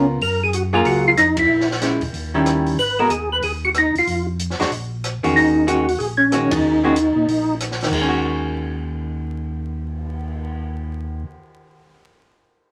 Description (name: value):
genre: soul jazz organ trio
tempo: 187 BPM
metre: 4/4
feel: swing 63% on 8ths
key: Eb minor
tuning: A4 = 440 Hz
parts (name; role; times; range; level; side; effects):
- percussive tonewheel organ; melody; 0.0-7.5 s; Db4 to Cb5; -19 LUFS; equal; slow rotary speaker, chorus vibrato
- archtop guitar, miked and amplified; accompaniment; 0.0-12.1 s; Eb3 to Bb4; -23 LUFS; equal; none
- mellow tonewheel organ; bass; 0.0-11.2 s; Ab1 to Bb2; -29 LUFS; equal; chorus vibrato, slow rotary speaker
- compact cocktail drum kit; drums; 0.2-10.4 s; crash cymbal, cymbal swell, hi-hat, kick drum, ride cymbal, rim click, snare drum; -32 LUFS; equal; none
room: wet studio reverb, RT60 0.6 s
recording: vinyl crackle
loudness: -20 LUFS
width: mono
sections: 0.0-7.9 A section; 7.9-10.5 B section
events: band accent 1.3, 6.5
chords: 0.2 Gbmaj9; 1.5 Bbm7b5; 2.1 Eb7b9; 2.8 Abm; 4.1 Fm6; 4.7 Bbm7b5; 7.9 Ebm7